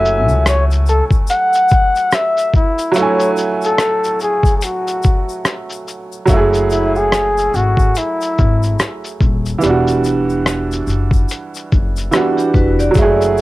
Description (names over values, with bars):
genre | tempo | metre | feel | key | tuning
lo-fi hip hop | 72 BPM | 4/4 | swing 61% on 16ths | F# minor | A4 = 440 Hz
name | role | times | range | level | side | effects
breathy flugelhorn | melody | 0.0-9.2 s | E4 to F#5 | -16 LUFS | left 1 dB | cassette tape, plate reverb
bright upright piano | accompaniment | 0.0-13.4 s | E3 to G#5 | -18 LUFS | right 3 dB | cassette tape
upright bass | bass | 0.0-1.0, 6.3-13.4 s | D#1 to C#2 | -17 LUFS | left 1 dB | none
lo-fi sampler-style drum kit | drums | 0.1-13.4 s | hi-hat, kick drum, rim click, shaker | -16 LUFS | left 1 dB | none
tube shaker | percussion | 0.3-13.4 s | none | -34 LUFS | left 10 dB | none
vibraphone with medium hard mallets | second line | 12.1-13.2 s | B3 to D5 | -21 LUFS | left 4 dB | cassette tape, analog delay
room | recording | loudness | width
light reverb | home recording on cassette | -12 LUFS | side -18 dB against mid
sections
0.0-6.3 A section; 6.3-13.4 B section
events
break 3.0-6.3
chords
0.0 F#m9; 9.6 Em9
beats
0.45 1.28 2.12 | 2.95 3.78 4.62 5.45 | 6.28 7.12 7.95 8.78 | 9.62 10.45 11.28 12.12 | 12.95